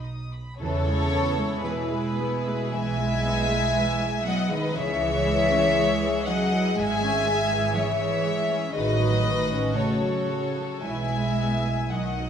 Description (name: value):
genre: classical, slow romantic movement for string orchestra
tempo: 53-61 BPM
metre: 4/4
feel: rubato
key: E major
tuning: A4 = 441 Hz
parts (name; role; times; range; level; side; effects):
- warm studio violin section; melody; 0.0-12.3 s; B4 to D#6; -28 LUFS; left 4 dB; none
- warm studio cello section; bass; 0.0-12.3 s; B2 to G#3; -29 LUFS; right 2 dB; none
- warm studio double bass section; bass; 0.0-12.3 s; G#1 to E2; -29 LUFS; right 3 dB; none
- clear studio violin section; second line; 0.6-12.3 s; G#4 to E5; -29 LUFS; left 1 dB; none
- warm studio viola section; accompaniment; 0.6-12.3 s; C#3 to G#4; -29 LUFS; equal; none
room: wet scoring stage reverb, RT60 1.7 s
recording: dark, warm production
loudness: -22 LUFS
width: side -8 dB against mid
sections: 0.6-12.3 A section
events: none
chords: 0.0 B; 0.6 E; 4.8 C#m; 8.7 F#m/A; 10.8 E/B